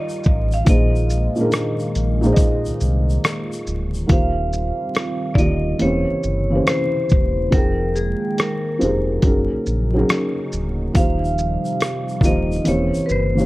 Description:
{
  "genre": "lo-fi hip hop",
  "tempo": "70 BPM",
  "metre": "4/4",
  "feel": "swing 66% on 16ths",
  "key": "Eb major",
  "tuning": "A4 = 435 Hz",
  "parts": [
    { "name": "vibraphone with medium hard mallets", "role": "melody", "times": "0.0-13.5 s", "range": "Ab4 to F5", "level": "-26 LUFS", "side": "equal", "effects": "low-pass filter" },
    { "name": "felt-muted upright piano", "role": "accompaniment", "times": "0.0-13.5 s", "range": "Bb2 to G5", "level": "-22 LUFS", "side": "equal", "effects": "cassette tape, low-pass filter" },
    { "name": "dark analog pad", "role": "sustained chords", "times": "0.0-13.5 s", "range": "C3 to G5", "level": "-28 LUFS", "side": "equal", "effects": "chorus, low-pass filter" },
    { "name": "tube shaker", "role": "percussion", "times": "0.1-4.1, 11.0-13.5 s", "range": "none", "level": "-41 LUFS", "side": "left 4 dB", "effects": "none" },
    { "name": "dusty soul sampler-style drum kit", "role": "drums", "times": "0.2-13.4 s", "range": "hi-hat, kick drum, rim click, shaker", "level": "-18 LUFS", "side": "equal", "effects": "vintage 12-bit sampler grit" },
    { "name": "sub bass with octave", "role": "bass", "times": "0.3-13.5 s", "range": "D1 to C2", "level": "-22 LUFS", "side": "equal", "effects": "none" }
  ],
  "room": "light reverb, studio ambience",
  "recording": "vinyl crackle",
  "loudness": "-17 LUFS",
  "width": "side -19 dB against mid",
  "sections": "0.0-4.1 A section; 4.1-13.5 B section",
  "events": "none",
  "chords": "0.0 Ebadd9; 0.7 Bb7sus4; 4.1 Eb69; 5.8 C7b9/E; 7.5 Fm11; 9.2 Gb6; 11.0 Eb69; 12.7 C7b9/E",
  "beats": "| 0.67 1.52 2.38 3.24 | 4.09 4.95 5.81 6.67 | 7.52 8.38 9.24 10.09 | 10.95 11.81 12.67"
}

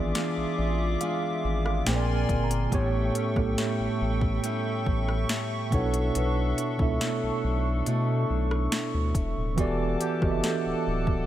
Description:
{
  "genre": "contemporary R&B",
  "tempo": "70 BPM",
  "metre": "4/4",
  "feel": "straight",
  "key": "E dorian",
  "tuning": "A4 = 440 Hz",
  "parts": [
    { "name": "mellow tine electric piano", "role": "accompaniment", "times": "0.0-11.3 s", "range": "A2 to A#5", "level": "-28 LUFS", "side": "right 3 dB", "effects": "medium stereo tremolo" },
    { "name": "hollow soft pad", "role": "sustained chords", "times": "0.0-11.3 s", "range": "D4 to D6", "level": "-33 LUFS", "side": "left 2 dB", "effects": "chorus" },
    { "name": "nylon-string guitar", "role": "arpeggios", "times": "0.0-11.3 s", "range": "A2 to A4", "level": "-35 LUFS", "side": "left 3 dB", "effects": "digital delay" },
    { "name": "saturated sub bass", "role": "bass", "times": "0.0-11.2 s", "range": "D1 to B2", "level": "-28 LUFS", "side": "equal", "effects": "none" },
    { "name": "smooth R&B drum kit", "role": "drums", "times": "0.1-11.3 s", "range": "hi-hat, kick drum, rim click, snare drum", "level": "-30 LUFS", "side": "left 1 dB", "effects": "overdrive" }
  ],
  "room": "little or no reverb",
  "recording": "none",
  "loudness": "-24 LUFS",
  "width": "side -12 dB against mid",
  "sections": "0.0-11.3 A section",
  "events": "tine electric piano fill 0.1-2.7",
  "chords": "0.0 E7b9; 1.9 A#9; 2.7 A7; 5.7 Bm11; 9.6 Em11",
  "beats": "0.15 1.01 1.86 | 2.72 3.58 4.43 5.29 | 6.15 7.01 7.86 8.72 | 9.58 10.44"
}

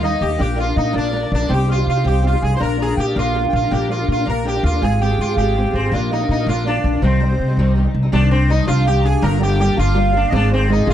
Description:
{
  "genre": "celtic folk, Celtic jig",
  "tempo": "109 BPM (dotted quarters)",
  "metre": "6/8",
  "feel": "straight",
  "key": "C minor",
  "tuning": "A4 = 439 Hz",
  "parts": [
    { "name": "sitar", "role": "melody", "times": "0.0-10.9 s", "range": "C4 to C5", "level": "-22 LUFS", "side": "right 2 dB", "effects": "none" },
    { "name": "accordion", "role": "second line", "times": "0.0-10.9 s", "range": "C5 to C6", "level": "-26 LUFS", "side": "left 1 dB", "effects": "light tremolo tuning" },
    { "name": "fingerpicked twelve-string acoustic guitar", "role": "accompaniment", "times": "0.0-10.9 s", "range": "G2 to C5", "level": "-21 LUFS", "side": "left 1 dB", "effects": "analog chorus" },
    { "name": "upright bass", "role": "bass", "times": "0.0-10.9 s", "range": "G1 to C3", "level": "-18 LUFS", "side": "equal", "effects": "none" }
  ],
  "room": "little or no reverb",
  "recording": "dark, warm production",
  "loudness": "-15 LUFS",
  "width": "side -10 dB against mid",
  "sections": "0.0-8.1 A section; 8.1-10.9 B section",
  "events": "none",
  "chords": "0.4 Bb; 1.5 Cm; 2.6 Bb; 4.8 Fm/Ab; 5.9 Bb; 7.0 Cm; 8.1 Cmadd9; 9.2 Gm7; 10.3 Fm/Ab",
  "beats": "| 0.40 0.95 | 1.50 2.05 | 2.60 3.16 | 3.71 4.26 | 4.81 5.37 | 5.92 6.47 | 7.02 7.57 | 8.12 8.67 | 9.22 9.77 | 10.32 10.87"
}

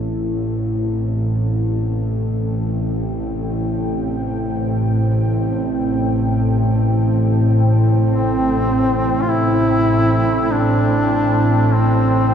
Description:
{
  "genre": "dark ambient drone",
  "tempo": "free time",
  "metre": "none",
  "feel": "none",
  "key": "A minor",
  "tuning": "A4 = 441 Hz",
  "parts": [
    { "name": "deep dark ambient pad", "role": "sustained chords", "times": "0.0-12.3 s", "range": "E3 to G5", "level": "-23 LUFS", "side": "right 3 dB", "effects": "chorus, built-in reverb" },
    { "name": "bowed-like drone", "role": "drone", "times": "0.0-12.3 s", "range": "A1 to A2", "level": "-17 LUFS", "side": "equal", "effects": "built-in reverb" },
    { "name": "warm duduk", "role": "melody", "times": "8.1-12.3 s", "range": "C4 to F4", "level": "-18 LUFS", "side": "left 1 dB", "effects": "ping-pong delay" }
  ],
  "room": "wet cathedral reverb, RT60 6.5 s",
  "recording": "dark, warm production",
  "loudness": "-15 LUFS",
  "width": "side -8 dB against mid",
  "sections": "0.0-12.3 A section",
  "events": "fade-in on ambient pad 0.0-12.3; filter sweep on synth drone 0.0-12.3",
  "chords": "0.0 Am7",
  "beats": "free time"
}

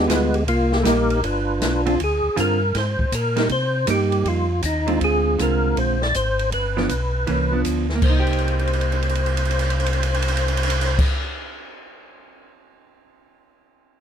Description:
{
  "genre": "soul jazz organ trio",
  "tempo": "159 BPM",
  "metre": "4/4",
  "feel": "swing 65% on 8ths",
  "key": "C minor",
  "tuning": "A4 = 440 Hz",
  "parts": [
    { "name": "percussive tonewheel organ", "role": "melody", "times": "0.0-11.0 s", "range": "Ab3 to D5", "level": "-22 LUFS", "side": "equal", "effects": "slow rotary speaker, chorus vibrato" },
    { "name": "vintage hollow-body jazz guitar", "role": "accompaniment", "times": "0.0-11.1 s", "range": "D3 to Ab4", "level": "-24 LUFS", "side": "right 4 dB", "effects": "none" },
    { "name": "mellow tonewheel organ", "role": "bass", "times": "0.0-11.0 s", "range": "G1 to C3", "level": "-23 LUFS", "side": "equal", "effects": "slow rotary speaker" },
    { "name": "open jazz drum kit", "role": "drums", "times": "0.1-12.5 s", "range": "crash cymbal, hi-hat, kick drum, ride cymbal, snare drum", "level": "-26 LUFS", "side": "equal", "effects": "none" }
  ],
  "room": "light reverb",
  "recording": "close, detailed microphones",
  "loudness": "-18 LUFS",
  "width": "side -8 dB against mid",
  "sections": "0.0-2.0 A section; 2.0-8.0 B section; 8.0-11.1 C section",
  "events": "drum fill 8.2-11.0",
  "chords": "0.5 Cm7; 1.2 G7b9; 2.0 Dm7b5; 3.5 Cm7; 5.0 Dm7b5; 6.5 G7; 8.0 Cm7",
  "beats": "0.09 | 0.47 0.85 1.23 1.61 | 1.98 2.36 2.74 3.12 | 3.50 3.87 4.25 4.63 | 5.01 5.38 5.76 6.14 | 6.52 6.89 7.27 7.65 | 8.03 8.41 8.78 9.16 | 9.54 9.92 10.30 10.67"
}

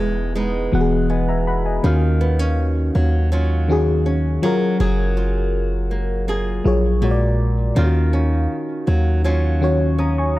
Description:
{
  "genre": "contemporary R&B",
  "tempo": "81 BPM",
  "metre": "4/4",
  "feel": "straight",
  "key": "Eb minor",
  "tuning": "A4 = 439 Hz",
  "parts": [
    { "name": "mellow FM electric piano", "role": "accompaniment", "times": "0.0-10.4 s", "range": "Bb2 to Eb6", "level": "-21 LUFS", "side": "left 2 dB", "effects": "chorus" },
    { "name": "flamenco guitar", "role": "arpeggios", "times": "0.0-10.4 s", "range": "Bb2 to Ab4", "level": "-25 LUFS", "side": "right 3 dB", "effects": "analog delay" },
    { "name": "warm 808-style bass", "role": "bass", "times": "0.0-10.4 s", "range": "E1 to Eb2", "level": "-19 LUFS", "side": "equal", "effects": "none" },
    { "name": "downlifter", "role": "sound effects", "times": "0.0-1.8 s", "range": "none", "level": "-46 LUFS", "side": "equal", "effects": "none" }
  ],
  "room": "digital ambience",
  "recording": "dry, gritty hardware recording",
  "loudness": "-16 LUFS",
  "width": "side -17 dB against mid",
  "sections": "0.0-10.4 A section",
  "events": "none",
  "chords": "0.0 Emaj7; 1.8 Ebm9; 4.4 Gbmaj9; 7.0 Bb7b13; 7.8 Ebm9",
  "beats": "0.36 1.10 | 1.84 2.58 3.32 4.06 | 4.80 5.54 6.28 7.02 | 7.76 8.50 9.24 9.99"
}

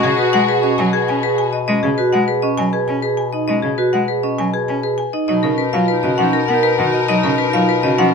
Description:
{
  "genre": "classical, minimalist pattern music",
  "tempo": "100 BPM",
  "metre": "3/4",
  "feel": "straight",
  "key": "B lydian",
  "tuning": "A4 = 440 Hz",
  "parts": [
    { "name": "marimba with hard mallets", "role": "melody", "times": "0.0-8.1 s", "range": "G#4 to G#5", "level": "-19 LUFS", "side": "left 9 dB", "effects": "none" },
    { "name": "warm clarinet", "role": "second line", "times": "0.0-1.4, 5.3-8.1 s", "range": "D#4 to F#4", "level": "-26 LUFS", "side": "right 3 dB", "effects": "none" },
    { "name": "rich cello", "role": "accompaniment", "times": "0.0-8.1 s", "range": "C#3 to C#4", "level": "-22 LUFS", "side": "right 2 dB", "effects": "none" },
    { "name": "rich studio string section", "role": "sustained chords", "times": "0.0-1.5, 5.3-8.1 s", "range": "D#4 to A#4", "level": "-23 LUFS", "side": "left 4 dB", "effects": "none" },
    { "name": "vibraphone with medium mallets", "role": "arpeggios", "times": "0.0-8.1 s", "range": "C#4 to B4", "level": "-20 LUFS", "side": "right 7 dB", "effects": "none" },
    { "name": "clear bass clarinet", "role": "bass", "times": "0.0-8.1 s", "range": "B2", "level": "-23 LUFS", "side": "left 3 dB", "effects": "none" }
  ],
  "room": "light reverb",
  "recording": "none",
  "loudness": "-14 LUFS",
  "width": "side -5 dB against mid",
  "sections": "0.0-5.3 A section; 5.3-8.1 A section",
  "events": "none",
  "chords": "0.0 G#m7/B; 5.3 Bmaj9",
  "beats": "0.48 1.08 | 1.68 2.28 2.88 | 3.48 4.08 4.68 | 5.28 5.88 6.48 | 7.08 7.68"
}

